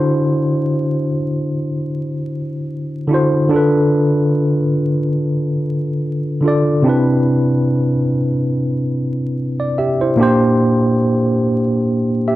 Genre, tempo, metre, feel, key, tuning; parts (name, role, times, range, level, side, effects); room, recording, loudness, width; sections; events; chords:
hip hop; 72 BPM; 4/4; swing 56% on 16ths; A4 = 440 Hz
tine electric piano; solo; 0.0-12.4 s; Bb2 to E5; -14 LUFS; equal; overdrive, medium stereo tremolo
moderate studio ambience, RT60 0.5 s; dark, warm production, vinyl crackle; -14 LUFS; side -15 dB against mid
0.0-12.4 A section
0.0 D9; 3.5 Dm6; 6.9 Cmaj9; 10.2 Bb69